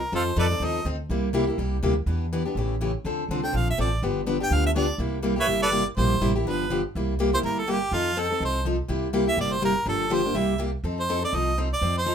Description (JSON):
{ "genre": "acoustic string swing (jazz manouche)", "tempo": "246 BPM", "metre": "4/4", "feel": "swing 55% on 8ths", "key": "C mixolydian", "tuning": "A4 = 441 Hz", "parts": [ { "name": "clear harmonica", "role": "melody", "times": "0.0-0.9, 3.4-12.1 s", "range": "F4 to G5", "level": "-26 LUFS", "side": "right 2 dB", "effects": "none" }, { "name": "upright bass", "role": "bass", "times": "0.0-12.1 s", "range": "G1 to F2", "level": "-28 LUFS", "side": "equal", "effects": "none" }, { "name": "picked plugged-in acoustic archtop guitar", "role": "accompaniment", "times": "0.1-12.1 s", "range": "C3 to A4", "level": "-26 LUFS", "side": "left 2 dB", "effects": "none" } ], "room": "light reverb", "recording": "minimal, uncompressed stereo recording", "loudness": "-22 LUFS", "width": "side -8 dB against mid", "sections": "0.0-6.9 A section; 6.9-12.1 A section", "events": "none", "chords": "0.0 F7; 1.1 C7; 2.1 Em7; 2.6 A7; 3.0 Dm7; 4.0 G7; 5.0 C7; 6.5 G7; 6.9 C7; 7.9 F7; 8.9 C7; 9.9 Gm7; 10.4 C7; 10.8 F7", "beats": "| 0.12 0.37 0.61 0.86 | 1.10 1.34 1.59 1.83 | 2.07 2.32 2.56 2.80 | 3.05 3.29 3.54 3.78 | 4.02 4.27 4.51 4.75 | 5.00 5.24 5.49 5.73 | 5.97 6.22 6.46 6.70 | 6.95 7.19 7.43 7.68 | 7.92 8.17 8.41 8.65 | 8.90 9.14 9.38 9.63 | 9.87 10.11 10.36 10.60 | 10.85 11.09 11.33 11.58 | 11.82 12.06" }